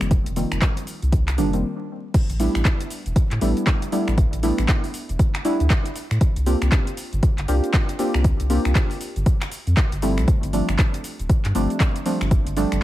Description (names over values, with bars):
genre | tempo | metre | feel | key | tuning
deep house | 118 BPM | 4/4 | swing 60% on 16ths | A phrygian | A4 = 440 Hz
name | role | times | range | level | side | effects
deep mellow chord stab | stabs | 0.0-12.8 s | Eb3 to G4 | -25 LUFS | equal | chorus, tape echo
warm sub bass | bass | 0.0-12.8 s | D1 to A2 | -22 LUFS | equal | tube saturation, sidechain pumping
deep house drum kit | drums | 0.0-12.8 s | crash cymbal, finger snaps, handclaps, hi-hat, shaker | -29 LUFS | equal | overdrive
electronic kick drum | drums | 0.1-12.4 s | none | -19 LUFS | equal | overdrive
room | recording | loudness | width
little or no reverb | vinyl crackle | -19 LUFS | side -14 dB against mid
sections
0.0-2.1 A section; 2.1-12.8 B section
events
stop 1.6-2.1; drop 2.1-12.8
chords
0.0 F9sus4; 2.1 A9sus4; 6.2 C9sus4; 10.3 G9sus4